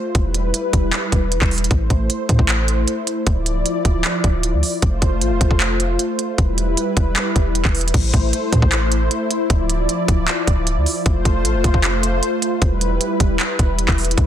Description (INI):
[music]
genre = hip hop, trap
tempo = 154 BPM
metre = 4/4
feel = half-time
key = A minor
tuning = A4 = 440 Hz
[part]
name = warm analog pad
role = sustained chords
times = 0.0-14.3 s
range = F3 to D5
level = -21 LUFS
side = left 1 dB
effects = chorus
[part]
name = clean 808-style bass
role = bass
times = 0.1-14.3 s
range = D1 to A2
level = -20 LUFS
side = equal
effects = none
[part]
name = trap drum kit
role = drums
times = 0.1-14.3 s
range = crash cymbal, handclaps, hi-hat, kick drum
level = -19 LUFS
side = equal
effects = vintage 12-bit sampler grit
[sound]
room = little or no reverb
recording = dense, heavily limited modern master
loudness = -16 LUFS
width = side -10 dB against mid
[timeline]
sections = 0.0-7.9 A section; 7.9-14.3 B section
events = none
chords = 0.1 Em; 1.7 Am; 3.3 Dmadd9; 4.8 F; 6.4 Em; 7.9 Am; 9.5 Dmadd9; 11.1 F; 12.6 Em